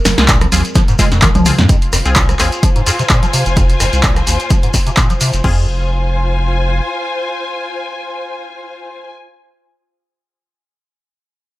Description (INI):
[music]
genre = acid house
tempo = 128 BPM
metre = 4/4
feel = swing 54% on 16ths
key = F minor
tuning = A4 = 440 Hz
[part]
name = warm analog pad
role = sustained chords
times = 0.0-1.7 s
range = Ab3 to Bb4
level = -28 LUFS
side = right 2 dB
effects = chorus, sidechain pumping
[part]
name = liquid acid bass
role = riff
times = 0.1-5.7 s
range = Eb2 to Ab3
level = -18 LUFS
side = equal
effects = phaser, tube saturation, lush chorus
[part]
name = saturated sub bass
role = bass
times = 0.1-6.8 s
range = F1 to F2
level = -16 LUFS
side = equal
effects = sidechain pumping
[part]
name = punchy analog drum machine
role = drums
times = 0.1-5.5 s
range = congas, crash cymbal, handclaps, hi-hat, rim click, snare drum, toms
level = -16 LUFS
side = equal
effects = none
[part]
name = shekere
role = percussion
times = 0.1-5.4 s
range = none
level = -23 LUFS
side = left 2 dB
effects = none
[part]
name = band-passed chord stab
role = stabs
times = 0.2-9.0 s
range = C4 to Ab4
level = -22 LUFS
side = left 2 dB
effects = chorus, dub echo
[part]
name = electronic kick drum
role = drums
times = 0.3-5.5 s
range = none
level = -13 LUFS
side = equal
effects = overdrive
[part]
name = warm studio string section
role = texture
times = 1.7-9.1 s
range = F4 to Ab5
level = -21 LUFS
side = left 2 dB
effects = sidechain pumping
[sound]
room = little or no reverb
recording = none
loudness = -11 LUFS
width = side -17 dB against mid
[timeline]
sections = 0.0-1.7 A section; 1.7-5.4 B section; 5.4-9.2 C section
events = drop 0.0-1.7; drum fill 1.2-1.7; filter sweep on acid bass 1.7-5.4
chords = 0.0 Fm